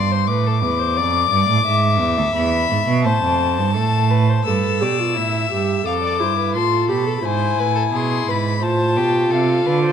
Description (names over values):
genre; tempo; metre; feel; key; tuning
classical, baroque-style fugue for string quartet; 86 BPM; 4/4; straight; unclear; A4 = 441 Hz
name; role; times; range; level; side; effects
warm violin; melody; 0.0-9.9 s; F5 to E6; -21 LUFS; left 9 dB; none
warm violin; second line; 0.0-9.9 s; G4 to F5; -24 LUFS; left 2 dB; none
rich cello; bass; 0.0-9.9 s; D2 to D3; -20 LUFS; right 5 dB; none
warm viola; accompaniment; 4.5-9.9 s; E4 to A4; -21 LUFS; right 1 dB; none
room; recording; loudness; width
moderate recital hall reverb, RT60 1.6 s; none; -16 LUFS; side -8 dB against mid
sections
0.0-4.5 A section; 4.5-9.9 B section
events
none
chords
0.3 Bm7b5; 1.7 E7; 3.1 Am; 4.5 Em/G; 5.9 Dm/F; 7.2 E/G#; 8.6 F/A